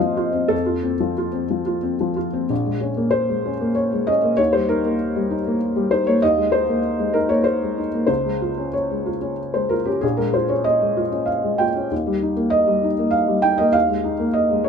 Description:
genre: neoclassical minimalist piano.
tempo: 90-101 BPM.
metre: 3/4.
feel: rubato.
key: Bb dorian.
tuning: A4 = 440 Hz.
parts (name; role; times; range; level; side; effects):
felt-muted upright piano; solo; 0.0-14.7 s; Bb1 to G5; -18 LUFS; equal; none.
room: light reverb.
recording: close, detailed microphones.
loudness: -18 LUFS.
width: side -6 dB against mid.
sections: 0.0-2.5 A section; 2.5-14.7 B section.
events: none.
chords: 0.0 F; 2.5 Bbm7; 4.4 Eb; 6.2 Abadd9/Eb; 8.1 Db; 10.0 Bbm7; 11.9 Eb; 13.7 Absus2/Eb.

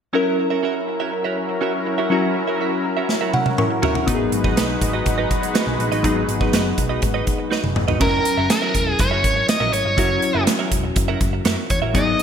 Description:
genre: 1980s-style pop.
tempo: 122 BPM.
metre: 4/4.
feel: straight.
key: unclear.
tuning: A4 = 439 Hz.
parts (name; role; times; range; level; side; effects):
glassy digital keys; accompaniment; 0.1-12.2 s; F#3 to C#6; -23 LUFS; left 2 dB; chorus.
lush unison pad; sustained chords; 0.1-8.0 s; F#3 to B4; -25 LUFS; left 1 dB; chorus.
direct-recorded clean electric guitar; riff; 0.1-12.2 s; B3 to E5; -26 LUFS; right 7 dB; analog chorus, digital delay.
big rock drum kit; drums; 3.1-12.2 s; crash cymbal, hi-hat, kick drum, snare drum, toms; -21 LUFS; equal; gated reverb.
hollow-body short-scale picked electric bass; bass; 4.1-12.1 s; E1 to F#2; -25 LUFS; equal; none.
biting lead guitar; melody; 8.0-12.2 s; A#4 to D#5; -21 LUFS; equal; overdrive, digital delay.
room: moderate plate reverb, RT60 1.9 s, studio reverb.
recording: bright 1980s-style digital production.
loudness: -17 LUFS.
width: side -8 dB against mid.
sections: 0.1-8.0 A section; 8.0-12.2 B section.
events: drum fill 3.1-4.1, 7.5-8.0; synth keys fill 3.1-4.1.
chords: 0.1 F#7; 4.1 G#m7; 8.0 F#7.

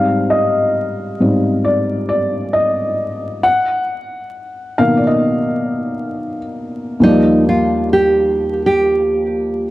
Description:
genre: hip hop.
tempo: 67 BPM.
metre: 4/4.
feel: swing 64% on 16ths.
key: Eb major.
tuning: A4 = 440 Hz.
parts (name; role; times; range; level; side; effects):
felt-muted upright piano; accompaniment; 0.0-9.7 s; Eb2 to F#5; -15 LUFS; left 1 dB; cassette tape, low-pass filter.
nylon-string guitar; melody; 7.0-9.7 s; Eb4 to G4; -14 LUFS; right 1 dB; analog delay.
room: moderate plate reverb, RT60 2.8 s.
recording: vinyl crackle.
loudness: -13 LUFS.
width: side -16 dB against mid.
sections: 0.0-7.0 A section; 7.0-9.7 B section.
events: felt piano solo 0.0-7.0.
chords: 0.0 Abmaj7; 3.4 Bmaj7; 7.0 Ebmaj9.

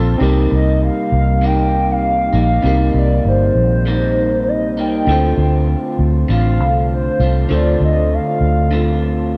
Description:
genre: indie pop.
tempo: 99 BPM.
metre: 4/4.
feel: straight.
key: C dorian.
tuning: A4 = 440 Hz.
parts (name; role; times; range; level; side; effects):
electric guitar through a small old amp; accompaniment; 0.0-9.4 s; C3 to A4; -23 LUFS; equal; lush chorus, warbly pitch drift.
mellow tine electric piano; accompaniment; 0.0-9.4 s; D3 to C5; -26 LUFS; equal; overdrive.
vintage muted fingered electric bass; bass; 0.0-9.4 s; G1 to D2; -18 LUFS; equal; none.
hollow clarinet-like synth lead; melody; 0.5-9.3 s; C5 to G5; -22 LUFS; equal; analog chorus, diffuse ambient delay.
room: moderate plate reverb, RT60 2.9 s.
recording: dreamy mix soaked in reverb.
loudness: -15 LUFS.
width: mono.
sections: 0.0-9.4 A section.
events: none.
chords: 0.2 Cm7; 5.1 Dm7.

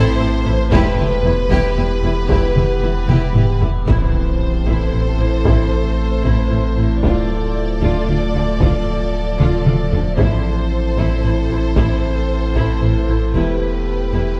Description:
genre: cinematic, hybrid orchestral and electronic film score.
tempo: 76 BPM (dotted quarters).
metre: 6/8.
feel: straight.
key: A minor.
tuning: A4 = 442 Hz.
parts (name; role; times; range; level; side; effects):
warm studio violin section; melody; 0.0-14.4 s; B4 to D5; -28 LUFS; equal; none.
rich symphonic violin section; second line; 0.0-14.4 s; E4 to A4; -33 LUFS; equal; none.
rich symphonic viola section; accompaniment; 0.0-14.4 s; E4 to F4; -30 LUFS; equal; none.
dark French horn section; sustained chords; 0.0-14.4 s; A3 to G4; -28 LUFS; equal; none.
metallic inharmonic drone; sustained chords; 0.1-14.4 s; E3 to D5; -28 LUFS; equal; chorus, built-in reverb.
saturated sub bass; bass; 0.0-14.4 s; D1 to A1; -22 LUFS; equal; none.
rich symphonic cello section; bass; 0.2-14.2 s; E2 to D3; -26 LUFS; equal; none.
rich symphonic double bass section; bass; 0.2-14.2 s; E1 to D2; -26 LUFS; equal; none.
taiko ensemble; drums; 0.7-14.4 s; none; -22 LUFS; equal; none.
impact; sound effects; 3.9-5.5 s; none; -26 LUFS; equal; none.
room: moderate scoring stage reverb, RT60 1.7 s.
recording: none.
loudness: -17 LUFS.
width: mono.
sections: 0.0-3.9 A section; 3.9-14.4 B section.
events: drum fill 3.1-3.9, 9.4-10.2; impact 3.9-5.5.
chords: 0.0 Am; 0.7 Em; 3.9 Am; 7.0 Dm; 10.2 Am; 13.3 Em.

